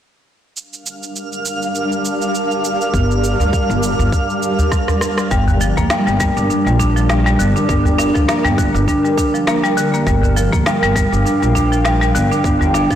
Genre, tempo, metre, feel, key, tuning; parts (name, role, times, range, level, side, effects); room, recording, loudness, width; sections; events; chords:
organic downtempo; 101 BPM; 4/4; swing 56% on 16ths; G minor pentatonic; A4 = 441 Hz
granular cloud pad; sustained chords; 1.0-13.0 s; G3 to G5; -20 LUFS; equal; built-in reverb, sidechain pumping
electronic cabasa, rim click and snare drum; drums; 0.6-13.0 s; -24 LUFS; equal; soft clipping on snare
twinkling granular texture; texture; 1.0-5.3 s; F5; -24 LUFS; right 2 dB; built-in reverb
upright bass; bass; 2.9-13.0 s; G1 to D2; -18 LUFS; equal; tube saturation
electronic kick drum; drums; 2.9-13.0 s; -19 LUFS; equal
udu; percussion; 4.0-12.7 s; -20 LUFS; equal
marimba with hard mallets; arpeggios; 5.3-13.0 s; D3 to D4; -16 LUFS; equal; tape echo
moderate lush hall reverb, RT60 2.0 s; blown-out, overdriven recording, overdrive; -13 LUFS; side -10 dB against mid
0.6-5.3 A section; 5.3-13.0 B section
drum fill 4.7-5.3
0.6 Gm7